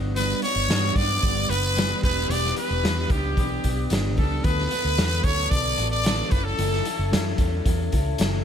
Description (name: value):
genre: indie pop, bedroom pop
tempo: 112 BPM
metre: 4/4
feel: straight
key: unclear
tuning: A4 = 445 Hz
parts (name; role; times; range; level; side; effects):
- electric guitar through a small old amp; accompaniment; 0.0-8.4 s; D3 to A4; -29 LUFS; left 1 dB; wide subtle chorus, warbly pitch drift, plate reverb
- vintage muted fingered electric bass; bass; 0.0-8.4 s; E1 to G2; -26 LUFS; equal; none
- growling trumpet; melody; 0.2-7.2 s; G4 to D5; -26 LUFS; equal; wide subtle chorus, tape echo
- raw garage drum kit; drums; 0.2-8.3 s; crash cymbal, hi-hat, kick drum, snare drum; -25 LUFS; equal; none
room: light reverb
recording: none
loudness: -20 LUFS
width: side -8 dB against mid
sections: 0.0-8.4 A section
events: none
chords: 0.0 Gmaj7; 2.0 Em7; 4.4 D6; 6.3 F#m7